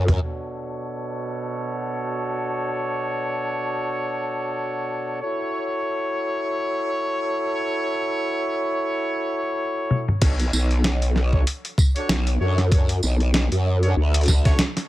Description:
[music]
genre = glitch hop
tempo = 96 BPM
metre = 4/4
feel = swing 56% on 16ths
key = B minor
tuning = A4 = 440 Hz
[part]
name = growl bass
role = bass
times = 0.0-0.2, 10.2-14.6 s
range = B1 to F#2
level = -20 LUFS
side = equal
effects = chorus
[part]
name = boom bap sampler-style drum kit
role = drums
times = 0.1-0.4, 9.9-14.9 s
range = crash cymbal, hi-hat, snare drum, tambourine, toms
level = -24 LUFS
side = equal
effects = low-pass filter on hats, low-pass filter on snare, low-pass filter on toms, low-pass filter on cymbals, low-pass filter on perc
[part]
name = warm horn section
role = stabs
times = 0.2-14.6 s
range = B2 to C#5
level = -25 LUFS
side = equal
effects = vintage 12-bit sampler grit, sidechain pumping, low-pass filter, dub echo
[part]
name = electronic kick drum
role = drums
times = 10.2-14.6 s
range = none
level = -18 LUFS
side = equal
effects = none
[sound]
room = little or no reverb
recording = none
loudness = -21 LUFS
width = side -15 dB against mid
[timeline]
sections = 0.2-10.2 A section; 10.2-14.9 B section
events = drum fill 0.0, 9.9-10.2; filter sweep on horn section 0.2-10.2; drop 10.2-14.9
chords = 0.2 Bm7; 5.2 F#m7; 10.2 Bm7

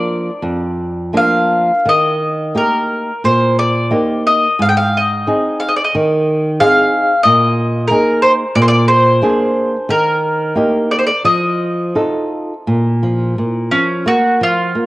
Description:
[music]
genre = fado-style ballad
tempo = 89 BPM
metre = 4/4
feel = uneven beats, rubato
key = Eb major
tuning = A4 = 439 Hz
[part]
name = mandolin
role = melody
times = 0.0-14.9 s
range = Db4 to G5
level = -14 LUFS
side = equal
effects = cassette tape
[part]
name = flamenco guitar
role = accompaniment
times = 0.0-14.9 s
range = F2 to A4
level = -16 LUFS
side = right 1 dB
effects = cassette tape
[sound]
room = moderate spring reverb, RT60 2.2 s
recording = home recording on cassette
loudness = -12 LUFS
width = side -18 dB against mid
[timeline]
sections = 0.0-12.7 A section; 12.7-14.9 B section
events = none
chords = 0.0 Bb; 1.8 Eb; 4.6 Ab; 7.3 Bb7sus4; 8.6 Bb7; 9.9 Eb; 11.2 F7; 12.7 Bb5

